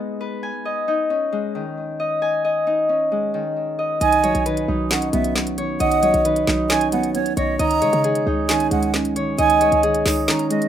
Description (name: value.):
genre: hip hop, trap.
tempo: 134 BPM.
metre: 4/4.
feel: half-time.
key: unclear.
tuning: A4 = 441 Hz.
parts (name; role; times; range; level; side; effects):
Celtic harp; arpeggios; 0.0-10.7 s; D#3 to G#5; -20 LUFS; left 3 dB; digital delay.
breathy jazz flute; second line; 4.0-10.7 s; C#5 to A#5; -22 LUFS; right 8 dB; digital delay.
felt-muted upright piano; accompaniment; 4.0-10.7 s; D#3 to C#4; -23 LUFS; right 5 dB; none.
short 808-style bass; bass; 4.0-10.3 s; B1 to C#3; -26 LUFS; equal; none.
trap drum kit; drums; 4.0-10.7 s; handclaps, hi-hat, snare drum; -24 LUFS; equal; none.
room: moderate studio reverb, RT60 0.5 s.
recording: rough home demo mix.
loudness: -17 LUFS.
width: side -10 dB against mid.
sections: 0.0-10.7 A section.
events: kick muted 10.3-10.7.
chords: 0.4 D#7sus4; 4.0 Badd9; 7.6 C#sus2.